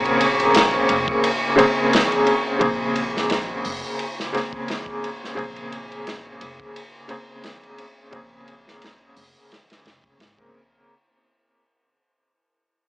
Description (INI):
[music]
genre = trip hop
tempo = 87 BPM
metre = 4/4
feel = swing 54% on 16ths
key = Bb minor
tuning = A4 = 442 Hz
[part]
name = clear upright piano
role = accompaniment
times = 0.0-10.9 s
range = Db3 to Bb4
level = -20 LUFS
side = equal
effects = tremolo, tape echo
[part]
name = upright bass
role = bass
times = 0.0-10.8 s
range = F1 to Bb1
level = -37 LUFS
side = equal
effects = none
[part]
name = wind-like tuned noise texture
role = texture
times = 0.0-10.9 s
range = Db6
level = -29 LUFS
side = right 1 dB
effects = built-in reverb
[part]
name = crunchy breakbeat drum kit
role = drums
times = 0.1-10.5 s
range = hi-hat, kick drum, ride cymbal, snare drum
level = -24 LUFS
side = equal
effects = none
[sound]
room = moderate echo chamber reverb, RT60 1.7 s, small room reverb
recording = echo-heavy mix, small speaker sound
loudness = -18 LUFS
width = side -23 dB against mid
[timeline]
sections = 0.0-10.9 A section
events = fade-out 0.0-10.9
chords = 0.0 Bbm9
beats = 0.54 1.23 1.92 | 2.61 3.30 3.99 4.68 | 5.37 6.06 6.75 7.44 | 8.13 8.82 9.51 10.20